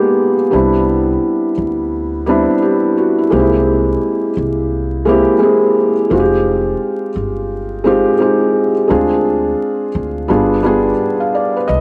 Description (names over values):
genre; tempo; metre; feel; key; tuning
lo-fi hip hop; 86 BPM; 4/4; swing 61% on 16ths; unclear; A4 = 440 Hz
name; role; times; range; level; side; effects
felt-muted upright piano; accompaniment; 0.0-11.8 s; G3 to F5; -15 LUFS; equal; cassette tape
upright bass; bass; 0.5-11.8 s; F1 to D2; -24 LUFS; equal; none
room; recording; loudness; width
moderate lush hall reverb, RT60 2.5 s; home recording on cassette, vinyl crackle; -15 LUFS; mono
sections
0.0-11.7 A section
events
none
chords
0.0 Db13 (rootless); 0.5 Cmaj9; 3.3 C7b13; 6.1 Fm9; 8.9 Dm7b5; 10.3 G7b9